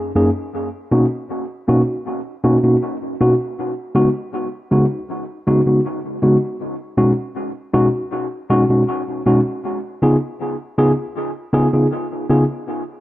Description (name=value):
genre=reggae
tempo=79 BPM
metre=4/4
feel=straight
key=unclear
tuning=A4 = 440 Hz
part: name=mellow tine electric piano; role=solo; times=0.2-12.4 s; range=F#2 to G#4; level=-16 LUFS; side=equal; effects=dub echo
room=moderate spring reverb, RT60 1.3 s, digital ambience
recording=none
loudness=-16 LUFS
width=side -15 dB against mid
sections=0.0-6.6 A section; 6.6-13.0 B section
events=none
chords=0.0 F#6; 0.5 Bmaj9; 3.6 C#7sus4; 6.6 B69; 9.6 C#7